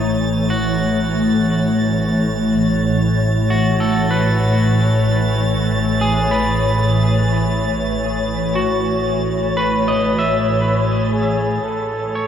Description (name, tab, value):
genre	ambient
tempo	59 BPM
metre	4/4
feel	straight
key	unclear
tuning	A4 = 440 Hz
part	glassy FM pad	sustained chords	0.0-12.3 s	A2 to C#5	-17 LUFS	left 1 dB	ensemble chorus, built-in reverb
part	electric guitar at the edge of break-up	arpeggios	0.0-12.3 s	D#4 to E5	-23 LUFS	right 1 dB	tape echo
part	muted chamber double bass section	bass	0.0-12.3 s	A1	-22 LUFS	equal	none
part	drifting glass-harmonics texture	texture	0.0-11.7 s	A6	-28 LUFS	right 4 dB	chorus, built-in reverb
part	mellow flugelhorn	melody	11.1-12.3 s	G#4 to A4	-22 LUFS	equal	none
room	wet huge ambient reverb, RT60 7.3 s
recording	dreamy mix soaked in reverb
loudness	-15 LUFS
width	side -9 dB against mid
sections	0.0-11.6 A section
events	none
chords	0.0 F#m7/A